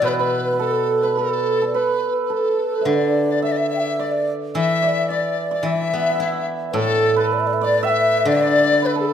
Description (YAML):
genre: chinese traditional, Chinese chamber ensemble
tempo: 108 BPM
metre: 4/4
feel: rubato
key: A shang mode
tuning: A4 = 441 Hz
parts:
  - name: breathy mellow low xiao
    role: melody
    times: 0.0-9.1 s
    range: A4 to G5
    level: -24 LUFS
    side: equal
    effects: none
  - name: hammered dulcimer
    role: second line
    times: 0.0-9.1 s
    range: G4 to G5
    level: -22 LUFS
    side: right 5 dB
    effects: none
  - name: mellow large dizi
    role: second line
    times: 0.0-9.1 s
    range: A4 to E5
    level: -22 LUFS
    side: left 4 dB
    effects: none
  - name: steel-string zither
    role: accompaniment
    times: 0.0-9.1 s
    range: A2 to E4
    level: -24 LUFS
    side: left 2 dB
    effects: none
room: wet recital hall reverb, RT60 1.4 s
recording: none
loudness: -17 LUFS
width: side -8 dB against mid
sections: 0.0-9.1 A section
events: none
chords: none